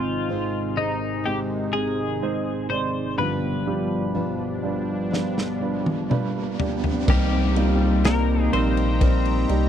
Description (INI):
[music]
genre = pop ballad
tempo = 62 BPM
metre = 4/4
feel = straight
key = unclear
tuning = A4 = 438 Hz
[part]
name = twelve-string electric guitar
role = melody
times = 0.0-9.7 s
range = G3 to C5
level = -27 LUFS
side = left 3 dB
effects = wide subtle chorus
[part]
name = warm grand piano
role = accompaniment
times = 0.0-9.7 s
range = G1 to D5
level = -26 LUFS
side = right 8 dB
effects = none
[part]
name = sweeping resonant pad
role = sustained chords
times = 0.0-9.7 s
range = B2 to Bb5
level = -32 LUFS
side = left 2 dB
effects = chorus
[part]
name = picked steel-string acoustic guitar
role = arpeggios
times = 0.0-9.7 s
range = G2 to Ab4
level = -31 LUFS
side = left 11 dB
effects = none
[part]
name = riser and downlifter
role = sound effects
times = 4.6-9.7 s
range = none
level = -33 LUFS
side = left 1 dB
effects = none
[part]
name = modern studio drum kit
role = drums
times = 5.1-9.7 s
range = crash cymbal, kick drum, ride cymbal, snare drum, toms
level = -23 LUFS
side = left 1 dB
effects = none
[part]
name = dark French horn section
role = second line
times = 7.1-9.7 s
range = Eb4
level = -31 LUFS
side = left 7 dB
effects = none
[part]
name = warm sub bass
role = bass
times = 7.1-9.7 s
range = Bb1 to C2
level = -22 LUFS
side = left 1 dB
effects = none
[sound]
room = little or no reverb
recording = dry, close 1970s-style studio recording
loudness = -21 LUFS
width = side -9 dB against mid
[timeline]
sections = 0.0-7.1 A section; 7.1-9.7 B section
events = riser 4.6-7.1; drum fill 5.1-7.1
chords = 0.0 Ab; 3.2 G7; 7.1 Cm7